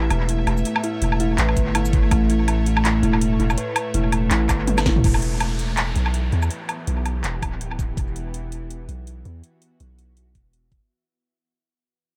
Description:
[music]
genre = half-time drum and bass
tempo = 164 BPM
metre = 4/4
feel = swing 56% on 16ths, half-time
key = E dorian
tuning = A4 = 440 Hz
[part]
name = bowed-like drone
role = sustained chords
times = 0.0-10.9 s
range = A2 to E5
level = -29 LUFS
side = equal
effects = built-in reverb, sidechain pumping
[part]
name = dark detuned synth bell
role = arpeggios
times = 0.0-5.1 s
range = E4 to B4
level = -31 LUFS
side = equal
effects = chorus, phaser, vintage 12-bit sampler grit, tape echo
[part]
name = long sustained 808-style bass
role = bass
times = 0.0-10.8 s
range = D1 to E2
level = -25 LUFS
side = equal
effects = none
[part]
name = drum and bass drum kit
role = drums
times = 0.1-10.8 s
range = handclaps, hi-hat, shaker, snare drum, toms, woodblock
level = -28 LUFS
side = equal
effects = dub echo
[part]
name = electronic kick drum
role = drums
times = 1.6-2.2, 4.5-5.1, 7.4-8.1, 10.4-10.8 s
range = none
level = -24 LUFS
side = equal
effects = none
[part]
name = downlifter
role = sound effects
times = 5.0-8.0 s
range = none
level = -38 LUFS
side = equal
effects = none
[sound]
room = light reverb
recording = echo-heavy mix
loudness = -21 LUFS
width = mono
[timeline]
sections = 0.0-5.0 A section; 5.0-10.9 B section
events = drop 0.0-5.0; drum fill 4.7-5.0; fade-out 5.0-10.9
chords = 0.0 A; 5.0 Em

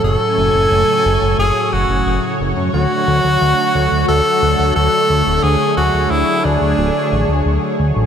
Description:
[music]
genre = synthwave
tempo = 89 BPM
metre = 4/4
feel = straight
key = unclear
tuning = A4 = 439 Hz
[part]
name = breathy tenor saxophone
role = melody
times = 0.0-7.8 s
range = D4 to A4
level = -16 LUFS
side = equal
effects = ping-pong delay
[part]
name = analog string pad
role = sustained chords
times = 0.0-8.1 s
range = A2 to G#5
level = -18 LUFS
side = equal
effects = ensemble chorus
[part]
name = fat analog bass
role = bass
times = 0.0-8.1 s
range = D1 to F#2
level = -17 LUFS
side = equal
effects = none
[sound]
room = wet plate reverb, RT60 2.9 s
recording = bright 1980s-style digital production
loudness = -12 LUFS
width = side -8 dB against mid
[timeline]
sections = 0.0-8.1 A section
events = none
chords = 0.0 F#m; 2.7 Dmaj7

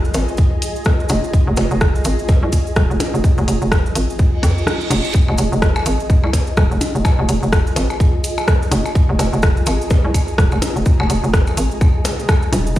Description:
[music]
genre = minimal techno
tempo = 126 BPM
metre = 4/4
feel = swing 59% on 16ths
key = F minor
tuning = A4 = 441 Hz
[part]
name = hollow knocking FM bass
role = bass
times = 0.0-12.8 s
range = Eb1 to F2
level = -18 LUFS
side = equal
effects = sidechain pumping
[part]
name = cabasa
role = percussion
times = 0.0-12.8 s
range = none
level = -32 LUFS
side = right 3 dB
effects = none
[part]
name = flickering grainy texture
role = texture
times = 0.0-12.8 s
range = Ab4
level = -30 LUFS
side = right 2 dB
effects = built-in reverb, sidechain pumping
[part]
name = granular cloud pad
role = texture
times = 0.0-12.8 s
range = F4 to Bb5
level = -27 LUFS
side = equal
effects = built-in reverb, sidechain pumping
[part]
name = garage drum kit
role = drums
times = 0.1-12.6 s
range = hi-hat, rim click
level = -22 LUFS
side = equal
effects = small room ambience
[part]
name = percussion blips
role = percussion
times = 0.1-12.6 s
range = none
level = -25 LUFS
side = left 2 dB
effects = small room ambience, tape echo
[part]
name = electronic kick drum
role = drums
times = 0.4-12.8 s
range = none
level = -14 LUFS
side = equal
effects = small room ambience
[part]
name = reverse cymbal and zap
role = sound effects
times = 4.4-5.1, 12.1-12.2 s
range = none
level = -27 LUFS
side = right 3 dB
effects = none
[sound]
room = little or no reverb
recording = played on a big sound system in a bare room, large studio reverb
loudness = -14 LUFS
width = side -14 dB against mid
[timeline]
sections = 0.0-12.8 A section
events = reverse cymbal 4.4-5.1; break 4.7-5.1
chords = 0.0 Fm7

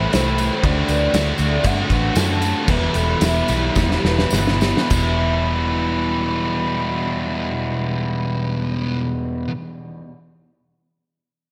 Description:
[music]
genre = rock, shoegaze and dream pop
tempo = 102-119 BPM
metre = 4/4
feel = straight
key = E minor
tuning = A4 = 438 Hz
[part]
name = pure sine lead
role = melody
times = 0.0-4.3 s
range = C5 to A5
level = -29 LUFS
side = equal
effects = chorus, phaser, slapback echo
[part]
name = picked twelve-string acoustic guitar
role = arpeggios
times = 0.0-5.7 s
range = E4 to C5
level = -32 LUFS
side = equal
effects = analog chorus, slapback echo
[part]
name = biting overdriven guitar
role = riff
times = 0.0-9.5 s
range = E2 to F#4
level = -26 LUFS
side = equal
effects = reverse reverb
[part]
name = thick fuzz guitar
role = riff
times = 0.0-9.5 s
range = E2 to D4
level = -26 LUFS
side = equal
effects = distortion, analog chorus
[part]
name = vintage muted fingered electric bass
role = bass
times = 0.0-9.4 s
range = E1 to G2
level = -25 LUFS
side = equal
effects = none
[part]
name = loose indie drum kit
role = drums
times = 0.1-5.0 s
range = crash cymbal, kick drum, snare drum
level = -24 LUFS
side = equal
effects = none
[part]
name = tambourine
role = percussion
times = 0.1-5.2 s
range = none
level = -36 LUFS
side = equal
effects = none
[sound]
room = light reverb, small room ambience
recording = none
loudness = -20 LUFS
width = mono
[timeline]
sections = 0.0-4.9 A section; 4.9-9.6 B section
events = slowing down 0.6-4.9; drum fill 3.8-4.9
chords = 0.0 Am; 0.6 D7; 2.7 Em

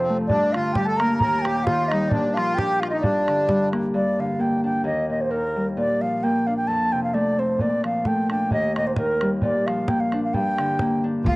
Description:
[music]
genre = celtic folk, Celtic polka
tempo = 131 BPM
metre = 2/4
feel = swing 54% on 8ths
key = G minor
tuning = A4 = 440 Hz
[part]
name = baroque flute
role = melody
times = 0.0-11.4 s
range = Bb4 to Bb5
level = -23 LUFS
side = equal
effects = none
[part]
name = accordion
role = second line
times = 0.0-3.7, 11.2-11.4 s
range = C4 to Bb4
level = -26 LUFS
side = equal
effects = cassette tape
[part]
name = Celtic harp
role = accompaniment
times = 0.0-11.4 s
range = Eb2 to F4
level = -24 LUFS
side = left 1 dB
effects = cassette tape
[part]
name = bodhran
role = percussion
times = 0.3-3.8, 7.6-11.4 s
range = none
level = -26 LUFS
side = right 1 dB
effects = none
[part]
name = upright bass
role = bass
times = 11.3-11.4 s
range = D2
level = -21 LUFS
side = equal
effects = none
[sound]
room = moderate spring reverb, RT60 2.9 s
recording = home recording on cassette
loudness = -20 LUFS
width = side -22 dB against mid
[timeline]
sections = 0.0-3.9 A section; 3.9-11.3 A section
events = none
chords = 0.3 Gm; 1.2 Eb; 2.1 Bb; 3.0 Gm; 4.9 Eb; 5.8 Bb; 6.7 F; 7.6 Bbmaj7; 8.5 Eb; 9.4 Bb; 10.3 Gm

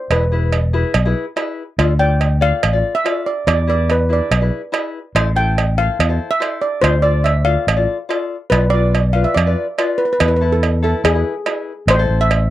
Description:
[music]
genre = calypso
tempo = 143 BPM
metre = 4/4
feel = straight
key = unclear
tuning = A4 = 437 Hz
[part]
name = steel pan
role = melody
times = 0.0-12.5 s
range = G#4 to G5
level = -19 LUFS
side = right 1 dB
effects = none
[part]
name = tenor ukulele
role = accompaniment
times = 0.1-12.3 s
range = E4 to D5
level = -22 LUFS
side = left 5 dB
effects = none
[part]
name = fingered electric bass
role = bass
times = 0.1-12.5 s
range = E1 to F2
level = -16 LUFS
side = equal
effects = none
[part]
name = cowbell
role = percussion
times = 0.1-12.4 s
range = none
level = -19 LUFS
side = right 6 dB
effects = none
[sound]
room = light reverb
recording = dry, close 1970s-style studio recording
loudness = -14 LUFS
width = side -14 dB against mid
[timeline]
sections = 0.0-11.9 A section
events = none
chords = 0.1 E; 1.8 Dm; 3.5 E7; 5.2 Am; 6.8 Dm; 8.5 Bdim; 10.2 Esus4; 11.0 E; 11.9 Am

